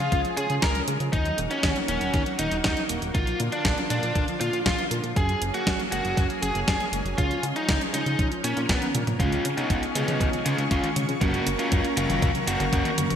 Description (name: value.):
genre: italo disco.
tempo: 119 BPM.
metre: 4/4.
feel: straight.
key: unclear.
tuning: A4 = 443 Hz.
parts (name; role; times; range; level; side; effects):
biting lead guitar; melody; 0.0-12.9 s; Bb3 to Bb4; -27 LUFS; equal; overdrive, ping-pong delay.
lush unison pad; sustained chords; 0.0-13.2 s; D3 to Db6; -32 LUFS; equal; chorus.
clean electric guitar; arpeggios; 0.0-13.2 s; Db3 to Gb4; -35 LUFS; right 4 dB; none.
chorused synth bass; bass; 0.0-13.2 s; Eb1 to Db3; -30 LUFS; equal; none.
clean 12-bit digital drum machine; drums; 0.1-13.2 s; hi-hat, snare drum, toms; -29 LUFS; equal; gated reverb.
electronic kick drum; drums; 0.1-12.8 s; none; -27 LUFS; equal; none.
analog synth brass; stabs; 9.2-13.2 s; Gb3 to Bb4; -31 LUFS; left 1 dB; chorus, cassette tape.
room: wet lush hall reverb, RT60 1.8 s.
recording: bright 1980s-style digital production.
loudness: -22 LUFS.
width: side -8 dB against mid.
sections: 0.0-9.2 A section; 9.2-13.2 B section.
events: drum fill 8.8-9.2, 9.2-13.2; filter sweep on analog polysynth 9.2-13.2.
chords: 0.0 Db; 1.1 Ebm; 3.1 Bb; 5.2 Gbadd9; 7.2 Db; 8.2 Bbm; 9.2 Db; 11.2 Gb.